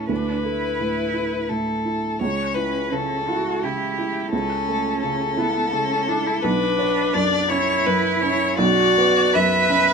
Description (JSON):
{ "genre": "neoclassical piano and strings", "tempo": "85 BPM", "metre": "3/4", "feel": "rubato", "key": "unclear", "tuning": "A4 = 440 Hz", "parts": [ { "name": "rich violin", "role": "melody", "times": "0.0-9.9 s", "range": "G4 to E5", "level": "-22 LUFS", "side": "left 5 dB", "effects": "none" }, { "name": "warm cello", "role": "second line", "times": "0.0-9.9 s", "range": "B3 to B4", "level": "-24 LUFS", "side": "right 4 dB", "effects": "none" }, { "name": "felt-muted upright piano", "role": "accompaniment", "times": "0.0-9.9 s", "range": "B1 to C#5", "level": "-24 LUFS", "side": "right 4 dB", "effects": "none" } ], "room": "light reverb", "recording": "minimal, uncompressed stereo recording", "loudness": "-18 LUFS", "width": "side -5 dB against mid", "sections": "0.0-9.9 A section", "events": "none", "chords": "0.0 Dsus2; 2.2 A/C#; 6.4 Bmadd9" }